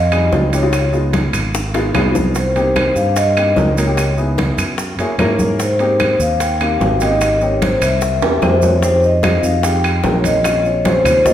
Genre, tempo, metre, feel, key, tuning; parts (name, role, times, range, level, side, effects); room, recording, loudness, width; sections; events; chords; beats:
Afro-Cuban jazz; 148 BPM; 4/4; straight; A4 = 439 Hz
vibraphone with medium mallets; melody; 0.0-11.3 s; C5 to G5; -16 LUFS; left 1 dB
fingered electric bass; bass; 0.0-11.3 s; Ab1 to Ab2; -18 LUFS; right 1 dB
warm baby grand piano; accompaniment; 0.1-11.3 s; G3 to Bb4; -20 LUFS; left 1 dB
bongos; percussion; 0.1-11.3 s; -26 LUFS; left 3 dB
claves; percussion; 0.1-11.3 s; -28 LUFS; left 2 dB
congas; percussion; 0.1-11.3 s; -23 LUFS; left 1 dB
maracas; percussion; 0.1-11.3 s; -31 LUFS; right 5 dB
timbales; percussion; 0.1-11.3 s; -23 LUFS; right 4 dB
wet recital hall reverb, RT60 1.4 s; recorded in a church or concert hall; -13 LUFS; side -10 dB against mid
0.0-8.8 A section; 8.8-11.3 B section
drum fill 1.5-2.4, 8.2-8.8
0.0 Dbmaj9#11; 0.7 Db9; 2.4 Cm7; 4.0 Dbm7; 4.8 Gb9; 5.6 Abmaj7; 8.0 C7; 8.8 Fm9; 10.4 Bbm9
0.33 | 0.73 1.14 1.54 1.95 | 2.35 2.76 3.17 3.57 | 3.98 4.38 4.79 5.19 | 5.59 6.00 6.41 6.81 | 7.21 7.62 8.02 8.43 | 8.83 9.24 9.64 10.05 | 10.45 10.85 11.26